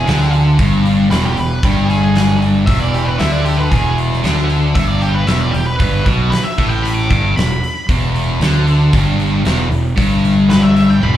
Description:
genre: blues rock power trio and southern rock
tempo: 115 BPM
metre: 4/4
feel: straight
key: unclear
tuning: A4 = 441 Hz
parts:
  - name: octave-fuzz lead guitar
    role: melody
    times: 0.0-11.2 s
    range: G4 to D6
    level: -22 LUFS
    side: equal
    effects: distortion, slapback echo
  - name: sludgy distorted guitar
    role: riff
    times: 0.0-11.2 s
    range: E2 to D3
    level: -16 LUFS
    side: left 1 dB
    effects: overdrive
  - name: fuzz fingered electric bass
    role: bass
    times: 0.0-11.2 s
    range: E1 to D2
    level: -16 LUFS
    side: equal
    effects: overdrive
  - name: huge arena drum kit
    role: drums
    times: 0.1-11.1 s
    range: hi-hat, kick drum, snare drum, toms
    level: -19 LUFS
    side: equal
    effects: none
room: light reverb, studio ambience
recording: live gig heard through the venue's PA, club reverb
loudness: -12 LUFS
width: side -12 dB against mid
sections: 0.0-11.2 A section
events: drum fill 11.0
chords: none

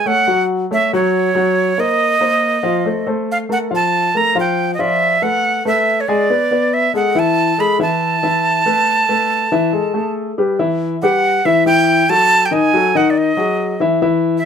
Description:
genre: jazz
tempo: 140 BPM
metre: 4/4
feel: straight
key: A major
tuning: A4 = 440 Hz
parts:
  - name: breathy bright jazz flute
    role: melody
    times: 0.0-14.5 s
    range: C#5 to B5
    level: -15 LUFS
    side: right 3 dB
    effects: none
  - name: warm grand piano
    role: accompaniment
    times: 0.1-14.4 s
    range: D#3 to G#5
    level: -16 LUFS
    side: left 3 dB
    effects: none
room: moderate studio ambience, RT60 0.5 s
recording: none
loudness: -13 LUFS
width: side -7 dB against mid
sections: 0.0-10.6 A section; 10.6-14.5 B section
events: none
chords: 0.3 F#m; 2.0 Cm7; 2.9 Am; 3.7 Bbmaj7 (rootless); 5.4 Amaj7sus2; 6.3 G#m7b5; 7.2 Asus2; 10.6 Emadd9; 12.3 D#dim; 13.2 G#5

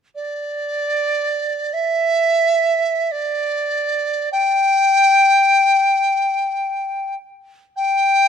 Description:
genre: chinese traditional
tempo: free time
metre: none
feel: none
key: unclear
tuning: A4 = 440 Hz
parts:
  - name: mellow hollow dizi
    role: solo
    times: 0.1-8.3 s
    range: D5 to G5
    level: -15 LUFS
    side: equal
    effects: none
room: light reverb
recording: close, detailed microphones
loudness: -15 LUFS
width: side -7 dB against mid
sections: 0.0-7.7 A section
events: none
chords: none

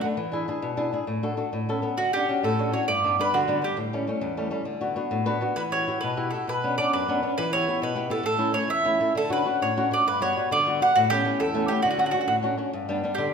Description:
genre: italian folk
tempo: 134 BPM (dotted quarters)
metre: 6/8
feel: rubato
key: D major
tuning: A4 = 441 Hz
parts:
  - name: mandolin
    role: melody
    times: 0.0-13.3 s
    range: F#4 to F#5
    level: -24 LUFS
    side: right 2 dB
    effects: none
  - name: flamenco guitar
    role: accompaniment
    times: 0.0-13.3 s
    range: E2 to F#5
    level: -26 LUFS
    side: left 2 dB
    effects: none
room: wet recital hall reverb, RT60 1.6 s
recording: minimal, uncompressed stereo recording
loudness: -22 LUFS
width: side -6 dB against mid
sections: 0.0-12.7 A section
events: nylon-string guitar fill 5.1-5.6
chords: 0.2 E7; 1.1 D/A; 1.5 Aadd9; 2.0 Dmaj7; 2.9 G; 3.8 A7; 4.7 D6; 5.6 Emadd9; 6.5 Bmadd9; 7.4 Em; 8.2 A; 9.2 Dmaj7; 10.1 Gmaj7; 10.9 Aadd9; 11.8 Dmaj7; 12.7 G

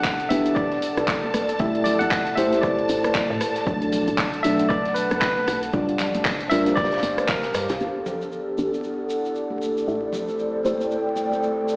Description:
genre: deep house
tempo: 116 BPM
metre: 4/4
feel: swing 59% on 16ths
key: E minor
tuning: A4 = 441 Hz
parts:
  - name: barky tine electric piano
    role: melody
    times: 0.0-7.7 s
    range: Bb4 to F#5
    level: -26 LUFS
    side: equal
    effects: dub echo
  - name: deep mellow chord stab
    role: stabs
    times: 0.0-11.8 s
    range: B2 to E5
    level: -25 LUFS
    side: equal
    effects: chorus, sidechain pumping
  - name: woody FM bass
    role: bass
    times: 0.0-11.8 s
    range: E1 to A2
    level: -31 LUFS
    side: equal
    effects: sidechain pumping
  - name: compact cocktail drum kit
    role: drums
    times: 0.0-7.8 s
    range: hi-hat, snare drum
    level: -38 LUFS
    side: equal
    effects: none
  - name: deep house drum kit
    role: drums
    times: 0.0-7.8 s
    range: handclaps, hi-hat, rim click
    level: -27 LUFS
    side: equal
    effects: overdrive
  - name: electronic kick drum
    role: drums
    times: 0.0-7.4 s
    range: none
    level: -29 LUFS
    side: equal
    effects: overdrive
  - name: egg shaker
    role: percussion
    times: 0.0-11.8 s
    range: none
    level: -43 LUFS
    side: right 1 dB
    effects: none
  - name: airy breathy pad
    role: texture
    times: 0.0-11.8 s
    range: G4 to G5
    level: -27 LUFS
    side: equal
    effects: chorus, sidechain pumping
  - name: string machine, violins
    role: texture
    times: 0.0-7.8 s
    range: A5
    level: -34 LUFS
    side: equal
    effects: ensemble chorus, sidechain pumping
  - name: congas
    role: percussion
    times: 1.2-11.4 s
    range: none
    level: -34 LUFS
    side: equal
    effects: none
  - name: warbly tape-like pad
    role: sustained chords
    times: 7.8-11.8 s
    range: A3 to D5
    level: -31 LUFS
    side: equal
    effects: chorus, built-in reverb, sidechain pumping
room: moderate lush hall reverb, RT60 2.1 s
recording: played on a big sound system in a bare room, large studio reverb, vinyl crackle, AM radio sound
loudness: -20 LUFS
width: side -28 dB against mid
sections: 0.0-7.8 A section; 7.8-11.8 B section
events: filter sweep on synth stab 7.8-11.8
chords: 0.0 Em7; 1.6 Am7; 3.7 Bm7; 5.7 Gm7; 7.8 Em7; 9.9 Am7

